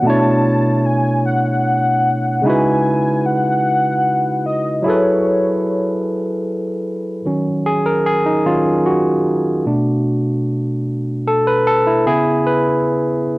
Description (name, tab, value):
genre	R&B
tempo	50 BPM (dotted quarters)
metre	6/8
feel	straight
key	Eb phrygian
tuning	A4 = 442 Hz
part	warm velvety synth lead	melody	0.0-6.4 s	Db5 to A5	-18 LUFS	left 1 dB	chorus, cassette tape
part	barky tine electric piano	accompaniment	0.0-13.4 s	B2 to C#5	-15 LUFS	equal	overdrive, cassette tape
room	moderate booth ambience, RT60 0.2 s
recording	home recording on cassette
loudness	-14 LUFS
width	side -20 dB against mid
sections	0.0-7.2 A section; 7.2-13.4 B section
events	tine electric piano solo 7.2-13.4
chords	0.0 Bm11; 2.4 Dbm11; 4.8 Gbm11; 7.2 Ebm7; 9.6 Bm7; 12.0 Dbm7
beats	| 0.04 1.24 | 2.44 3.64 | 4.84 6.04 | 7.24 8.44 | 9.64 10.84 | 12.04 13.24